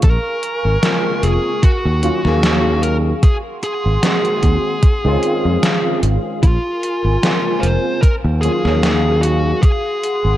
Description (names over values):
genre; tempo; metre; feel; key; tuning
vaporwave; 75 BPM; 4/4; swing 55% on 16ths; Eb dorian; A4 = 440 Hz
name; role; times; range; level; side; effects
fuzz lead guitar; melody; 0.0-10.4 s; F4 to C5; -20 LUFS; equal; distortion, vintage 12-bit sampler grit, tape echo
warbly tape-like pad; sustained chords; 0.0-10.4 s; Gb4 to Db6; -26 LUFS; equal; chorus, built-in reverb
fretless electric bass; bass; 0.0-10.4 s; F1 to F2; -16 LUFS; equal; tube saturation
detuned 8-bit digital drum machine; drums; 0.0-10.2 s; hi-hat, snare drum; -19 LUFS; equal; gated reverb
electronic kick drum; drums; 0.0-9.8 s; none; -12 LUFS; equal; overdrive
overdriven tine electric piano; accompaniment; 0.8-9.6 s; Db3 to Ab4; -22 LUFS; equal; ensemble chorus
room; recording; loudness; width
light reverb, digital ambience; none; -14 LUFS; side -13 dB against mid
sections
0.0-10.4 A section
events
none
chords
0.0 Bbm7; 1.6 Ebm9; 3.2 Ab7; 4.8 Dbmaj7; 6.4 Bbm7; 8.0 Ebm9; 9.6 Ab7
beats
| 0.03 0.83 1.63 2.43 | 3.23 4.03 4.83 5.63 | 6.43 7.23 8.03 8.83 | 9.63